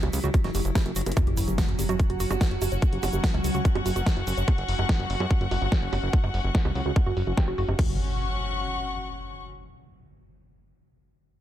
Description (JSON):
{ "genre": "psychedelic trance", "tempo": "145 BPM", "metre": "4/4", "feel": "straight", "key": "unclear", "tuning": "A4 = 441 Hz", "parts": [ { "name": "evolving wavetable pad", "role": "sustained chords", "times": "0.0-7.8 s", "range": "F#3 to F#4", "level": "-35 LUFS", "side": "right 1 dB", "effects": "phaser, built-in reverb, sidechain pumping" }, { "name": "woody wave-folded pluck", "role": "riff", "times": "0.0-8.0 s", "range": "E4 to G5", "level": "-34 LUFS", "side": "moving between left 3 dB and right 9 dB", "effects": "chorus, auto-pan, sidechain pumping, digital delay" }, { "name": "fat analog bass", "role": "bass", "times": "0.0-8.0 s", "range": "F#1 to F#2", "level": "-28 LUFS", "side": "equal", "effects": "none" }, { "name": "big-room dance drum kit", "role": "drums", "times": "0.0-7.9 s", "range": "bongos, crash cymbal, hi-hat, snare drum", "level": "-33 LUFS", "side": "right 2 dB", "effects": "low-pass filter on hats, low-pass filter on perc, low-pass filter on snare, low-pass filter on cymbals" }, { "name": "egg shaker", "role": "percussion", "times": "0.1-4.5 s", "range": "none", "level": "-40 LUFS", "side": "right 7 dB", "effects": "none" }, { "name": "electronic kick drum", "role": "drums", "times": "0.3-7.9 s", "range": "none", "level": "-23 LUFS", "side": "equal", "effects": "none" }, { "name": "impact", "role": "sound effects", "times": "1.2-2.8, 7.9-9.4 s", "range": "none", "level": "-32 LUFS", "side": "equal", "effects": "none" }, { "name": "dark chamber string section", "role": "texture", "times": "1.2-9.4 s", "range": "C#4 to C#6", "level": "-33 LUFS", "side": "left 4 dB", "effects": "sidechain pumping" } ], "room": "little or no reverb", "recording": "none", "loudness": "-23 LUFS", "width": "side -12 dB against mid", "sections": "0.0-1.2 A section; 1.2-7.8 B section; 7.8-9.4 C section", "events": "drop 0.0-1.2; drum fill 1.0; impact 1.2-2.8; filter sweep on drum 1.2-7.8; filter sweep on synth arpeggio sound 1.2-7.8", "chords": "0.0 F#5" }